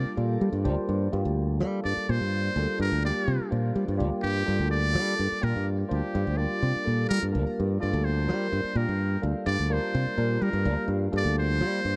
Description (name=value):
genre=electric jazz fusion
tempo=252 BPM (eighths)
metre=7/8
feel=straight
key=G minor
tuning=A4 = 440 Hz
part: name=trumpet with metal mute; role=melody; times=0.0-12.0 s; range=G4 to D5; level=-34 LUFS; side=equal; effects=none
part: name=tine electric piano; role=accompaniment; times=0.0-12.0 s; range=G3 to G5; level=-33 LUFS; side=equal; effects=phaser
part: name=modern bright fingered electric bass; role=bass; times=0.0-11.9 s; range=D2 to G3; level=-29 LUFS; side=equal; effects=none
room=light reverb, small room ambience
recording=dark, warm production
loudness=-27 LUFS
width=mono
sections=0.0-12.0 A section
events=muted trumpet solo 0.0-12.0; tine electric piano fill 0.4-1.1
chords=0.0 Gm9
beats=0.19 0.42 0.66 0.90 | 1.14 1.38 1.62 1.85 2.09 2.33 2.57 | 2.81 3.05 3.29 3.52 3.76 4.00 4.24 | 4.48 4.71 4.95 5.19 5.43 5.67 5.91 | 6.14 6.38 6.62 6.86 7.10 7.33 7.57 | 7.81 8.05 8.29 8.53 8.76 9.00 9.24 | 9.48 9.71 9.95 10.19 10.43 10.67 10.90 | 11.14 11.38 11.62 11.86